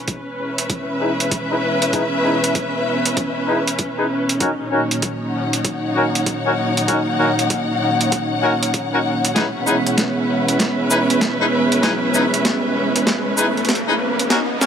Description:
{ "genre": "glitch hop", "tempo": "97 BPM", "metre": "4/4", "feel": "swing 64% on 16ths", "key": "C# dorian", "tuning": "A4 = 439 Hz", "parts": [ { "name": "dark analog pad", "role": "sustained chords", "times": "0.0-14.7 s", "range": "A#3 to C#5", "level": "-23 LUFS", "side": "right 2 dB", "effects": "chorus, vintage 12-bit sampler grit, sidechain pumping" }, { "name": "warm symphonic string section", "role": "texture", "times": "0.0-14.7 s", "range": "C#4 to F#5", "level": "-21 LUFS", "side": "left 1 dB", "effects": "sidechain pumping" }, { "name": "boom bap sampler-style drum kit", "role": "drums", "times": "0.1-14.7 s", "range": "hi-hat, shaker, snare drum", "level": "-20 LUFS", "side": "right 1 dB", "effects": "overdrive" }, { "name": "electronic kick drum", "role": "drums", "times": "0.1-14.5 s", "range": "none", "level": "-28 LUFS", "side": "equal", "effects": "overdrive, high-pass filter on kick, high-pass filter on room" }, { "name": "bright horn section", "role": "stabs", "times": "1.0-14.7 s", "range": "C#4 to B4", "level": "-22 LUFS", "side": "left 1 dB", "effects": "sidechain pumping, low-pass filter, ping-pong delay" }, { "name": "riser", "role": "sound effects", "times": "10.9-14.7 s", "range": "none", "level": "-27 LUFS", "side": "left 1 dB", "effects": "none" } ], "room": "moderate lush hall reverb, RT60 2.7 s", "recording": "high-pass filter", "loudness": "-16 LUFS", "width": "side -8 dB against mid", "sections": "0.0-14.7 A section", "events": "build-up 0.0-14.7; filter sweep on horn section 0.0-14.7; drum fill 9.4-14.7; riser 10.9-14.7", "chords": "0.0 C#m7; 4.4 D#m7; 9.4 C#m7", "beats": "0.08 0.70 1.31 | 1.93 2.55 3.17 3.79 | 4.41 5.03 5.64 6.26 | 6.88 7.50 8.12 8.74 | 9.36 9.97 10.59 11.21 | 11.83 12.45 13.07 13.69 | 14.30" }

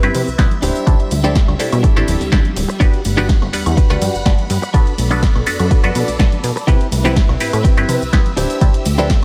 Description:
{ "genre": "filtered disco house", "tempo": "124 BPM", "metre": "4/4", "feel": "straight", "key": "G major", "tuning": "A4 = 437 Hz", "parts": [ { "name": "muted clav", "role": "accompaniment", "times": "0.0-9.1 s", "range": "G3 to F#5", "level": "-24 LUFS", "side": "equal", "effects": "overdrive, phaser, sidechain pumping" }, { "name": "phased string machine", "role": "sustained chords", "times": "0.0-9.2 s", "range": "G3 to B5", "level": "-29 LUFS", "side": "equal", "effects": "ensemble chorus, phaser, sidechain pumping" }, { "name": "direct-recorded clean electric guitar", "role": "riff", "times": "0.0-9.2 s", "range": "C4 to C5", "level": "-26 LUFS", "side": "equal", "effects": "sidechain pumping" }, { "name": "plucky analog bass", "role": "bass", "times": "0.0-9.1 s", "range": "D1 to C3", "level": "-21 LUFS", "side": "equal", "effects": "sidechain pumping" }, { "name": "punchy analog drum machine", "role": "drums", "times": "0.0-9.2 s", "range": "hi-hat, ride cymbal, shaker, snare drum, woodblock", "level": "-27 LUFS", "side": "equal", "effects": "sidechain pumping on hats, sidechain pumping on perc, sidechain pumping on cymbals" }, { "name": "tambourine and congas", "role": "percussion", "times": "0.1-9.2 s", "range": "none", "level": "-30 LUFS", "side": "equal", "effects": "sidechain pumping on perc" }, { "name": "electronic kick drum", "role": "drums", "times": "0.4-9.2 s", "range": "none", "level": "-15 LUFS", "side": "equal", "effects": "none" } ], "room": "light reverb", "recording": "none", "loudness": "-15 LUFS", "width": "mono", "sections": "0.0-9.2 A section", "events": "none", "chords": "0.0 Cmaj7; 0.6 D9sus4; 2.8 Gmaj7; 4.7 Bm7; 6.7 Cmaj7; 8.4 D9sus4", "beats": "0.39 | 0.87 1.36 1.84 2.32 | 2.81 3.29 3.77 4.26 | 4.74 5.23 5.71 6.20 | 6.68 7.16 7.65 8.13 | 8.61 9.10" }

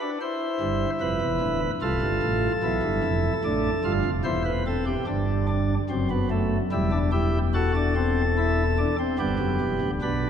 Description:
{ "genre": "classical, baroque-style 4-part fugue for pipe organ", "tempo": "73 BPM", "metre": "3/4", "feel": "straight", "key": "unclear", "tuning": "A4 = 440 Hz", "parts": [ { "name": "pipe organ, sparkling flutes", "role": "solo", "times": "0.0-10.3 s", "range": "C1 to C5", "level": "-22 LUFS", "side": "equal", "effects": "none" } ], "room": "wet church reverb, RT60 3.4 s", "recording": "none", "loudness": "-22 LUFS", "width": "side -8 dB against mid", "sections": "0.0-10.0 A section", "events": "none", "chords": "0.2 C; 1.8 F/C; 2.6 G7; 4.3 C/E; 5.1 G; 6.7 Em7; 7.6 D7; 9.2 G", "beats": "| 0.21 1.01 1.82 | 2.63 3.44 4.26 | 5.08 5.91 6.73 | 7.55 8.38 9.20 | 10.02" }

